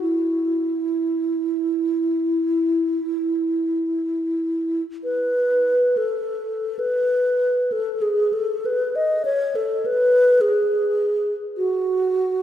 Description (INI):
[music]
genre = classical, free, expressive piece for unaccompanied alto flute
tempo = 29-52 BPM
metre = 4/4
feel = rubato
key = E major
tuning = A4 = 440 Hz
[part]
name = mellow hollow alto flute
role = solo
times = 0.0-12.4 s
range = E4 to D#5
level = -19 LUFS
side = equal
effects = none
[sound]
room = wet church reverb, RT60 2.7 s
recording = heard from further back in the room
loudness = -19 LUFS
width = side -10 dB against mid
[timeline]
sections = 0.0-6.8 A section; 6.8-12.4 B section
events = none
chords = none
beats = | 0.05 1.72 3.27 5.03 | 6.78 8.00 9.20 10.37 | 11.55